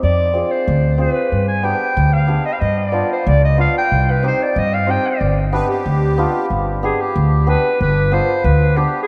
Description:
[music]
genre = klezmer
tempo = 93 BPM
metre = 2/4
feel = straight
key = G phrygian dominant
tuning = A4 = 440 Hz
[part]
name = clear clarinet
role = melody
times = 0.0-9.1 s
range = G4 to Ab5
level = -22 LUFS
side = equal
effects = none
[part]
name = upright bass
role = bass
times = 0.0-8.8 s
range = G1 to G2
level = -19 LUFS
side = equal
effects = none
[part]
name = hammered dulcimer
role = accompaniment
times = 0.3-8.9 s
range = B3 to Ab4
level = -24 LUFS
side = equal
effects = none
[part]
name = accordion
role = second line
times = 5.5-6.5 s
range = G4 to B4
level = -28 LUFS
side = equal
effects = light tremolo tuning
[sound]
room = wet cathedral reverb, RT60 5.7 s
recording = in a vast, echoing space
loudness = -16 LUFS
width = mono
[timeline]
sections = 0.0-6.5 A section; 6.5-9.1 B section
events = clarinet solo 0.0-6.5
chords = 0.0 Fm; 1.3 G; 3.9 Cm; 5.2 G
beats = | 0.02 0.67 | 1.32 1.97 | 2.62 3.27 | 3.91 4.56 | 5.21 5.86 | 6.50 7.15 | 7.80 8.45

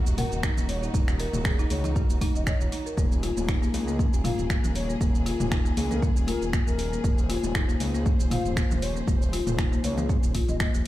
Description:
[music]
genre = afro house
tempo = 118 BPM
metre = 4/4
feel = swing 55% on 16ths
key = unclear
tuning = A4 = 442 Hz
[part]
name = warm symphonic string section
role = sustained chords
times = 0.0-10.9 s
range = Db3 to C5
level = -38 LUFS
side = equal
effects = sidechain pumping
[part]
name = dark detuned saw bass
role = bass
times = 0.1-10.8 s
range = Eb1 to Db2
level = -30 LUFS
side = equal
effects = sidechain pumping
[part]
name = deep house drum kit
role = drums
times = 0.1-10.8 s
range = finger snaps, hi-hat, shaker, toms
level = -33 LUFS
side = right 1 dB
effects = none
[part]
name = congas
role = percussion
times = 0.1-10.6 s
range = none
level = -35 LUFS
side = left 3 dB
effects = none
[part]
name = mellow hollow bansuri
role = melody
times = 0.2-10.7 s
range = Bb4 to Gb5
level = -38 LUFS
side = left 2 dB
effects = ping-pong delay
[part]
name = folk marimba with medium mallets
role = arpeggios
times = 0.2-10.8 s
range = F3 to Db5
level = -32 LUFS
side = left 3 dB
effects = sidechain pumping, ping-pong delay
[part]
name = electronic kick drum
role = drums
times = 0.4-10.7 s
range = none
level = -24 LUFS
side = equal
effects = none
[sound]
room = studio reverb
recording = played on a big sound system in a bare room, large studio reverb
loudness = -23 LUFS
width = side -15 dB against mid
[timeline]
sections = 0.0-10.9 A section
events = none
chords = 0.0 Ebm7; 3.0 Bbm7/Eb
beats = 0.43 | 0.94 1.45 1.96 2.47 | 2.98 3.48 3.99 4.50 | 5.01 5.52 6.03 6.53 | 7.04 7.55 8.06 8.57 | 9.08 9.59 10.09 10.60

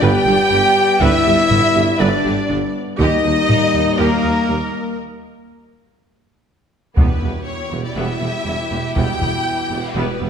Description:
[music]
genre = cinematic, epic orchestral film score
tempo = 121 BPM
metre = 4/4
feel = straight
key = E minor from 7.0 s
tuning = A4 = 439 Hz
[part]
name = rich studio violin section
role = melody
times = 0.0-10.3 s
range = Bb4 to G5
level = -25 LUFS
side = left 2 dB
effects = none
[part]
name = mellow hollow silver concert flute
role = second line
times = 0.0-5.0 s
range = Bb4 to G5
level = -25 LUFS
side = left 2 dB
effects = none
[part]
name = rich studio violin section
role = second line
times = 0.0-10.3 s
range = E4 to G5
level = -25 LUFS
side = left 1 dB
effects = none
[part]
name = rich studio viola section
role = accompaniment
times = 0.0-10.3 s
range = G3 to Eb5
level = -26 LUFS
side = right 2 dB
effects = none
[part]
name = dark trombone section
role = sustained chords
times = 0.0-10.3 s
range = B2 to B3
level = -26 LUFS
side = right 4 dB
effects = none
[part]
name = warm French horn section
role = sustained chords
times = 0.0-10.3 s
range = G3 to G4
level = -21 LUFS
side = left 4 dB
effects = none
[part]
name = clear trumpet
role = stabs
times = 0.0-5.0 s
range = Bb4 to G5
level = -21 LUFS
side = equal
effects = none
[part]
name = rich symphonic cello section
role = bass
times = 0.0-10.3 s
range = Eb2 to G2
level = -24 LUFS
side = right 2 dB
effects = none
[part]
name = warm chamber double bass section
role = bass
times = 0.0-10.3 s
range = E1 to Eb2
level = -25 LUFS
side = right 4 dB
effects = none
[part]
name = warm tuba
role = bass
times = 0.0-10.3 s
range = E1 to Eb2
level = -26 LUFS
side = right 3 dB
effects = none
[part]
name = taiko ensemble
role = drums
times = 1.0-3.7, 7.0-9.4 s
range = none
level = -19 LUFS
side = equal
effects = none
[part]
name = timpani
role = percussion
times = 7.0-7.7 s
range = E2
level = -27 LUFS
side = right 1 dB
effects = none
[sound]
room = wet scoring stage reverb, RT60 1.7 s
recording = none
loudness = -14 LUFS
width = side -7 dB against mid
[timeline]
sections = 0.0-7.0 A section; 7.0-10.3 B section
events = break 5.0-7.0; drum fill 6.2-7.0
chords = 0.0 G; 3.0 Eb; 5.0 N.C.; 7.0 Em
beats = 0.02 0.52 | 1.01 1.51 2.00 2.50 | 3.00 3.49 3.99 4.48 | 4.98 5.48 5.97 6.47 | 6.97 7.46 7.96 8.46 | 8.96 9.45 9.95

